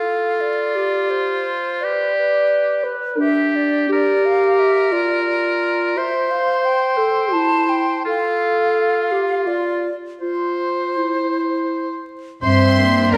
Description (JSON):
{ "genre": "cinematic", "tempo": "79-91 BPM", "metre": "3/4", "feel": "rubato", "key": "unclear", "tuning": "A4 = 440 Hz", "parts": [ { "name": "bright oboe", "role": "second line", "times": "0.0-13.2 s", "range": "F4 to C5", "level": "-25 LUFS", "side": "equal", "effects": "none" }, { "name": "dark clarinet", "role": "second line", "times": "0.0-12.1 s", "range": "D4 to D5", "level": "-21 LUFS", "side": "equal", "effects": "none" }, { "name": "hollow silver concert flute", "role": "second line", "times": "0.0-13.2 s", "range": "B4 to A5", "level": "-26 LUFS", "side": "equal", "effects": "none" }, { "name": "rich studio violin section", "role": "melody", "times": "12.4-13.2 s", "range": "C6", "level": "-26 LUFS", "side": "equal", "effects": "none" }, { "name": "rich studio violin section", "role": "second line", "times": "12.4-13.2 s", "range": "Bb5 to C6", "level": "-31 LUFS", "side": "equal", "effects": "none" }, { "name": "dark French horn section", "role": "sustained chords", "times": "12.4-13.2 s", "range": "C4", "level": "-20 LUFS", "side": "equal", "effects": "none" }, { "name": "rich studio double bass section", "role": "bass", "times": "12.4-13.2 s", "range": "G2", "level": "-21 LUFS", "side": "equal", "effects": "none" }, { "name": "rich studio viola section", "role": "accompaniment", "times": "12.8-13.2 s", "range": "Bb3 to D4", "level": "-22 LUFS", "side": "equal", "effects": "none" }, { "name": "rich studio cello section", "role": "bass", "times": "13.1-13.2 s", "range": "Bb4", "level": "-23 LUFS", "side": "equal", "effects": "none" } ], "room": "wet scoring stage reverb, RT60 1.5 s", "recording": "vinyl crackle", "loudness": "-19 LUFS", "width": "mono", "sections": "0.0-12.4 A section", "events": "none", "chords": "0.0 Fsus2; 1.8 G; 3.9 Bb; 6.0 C; 8.1 F6; 10.2 N.C.; 12.4 Gm" }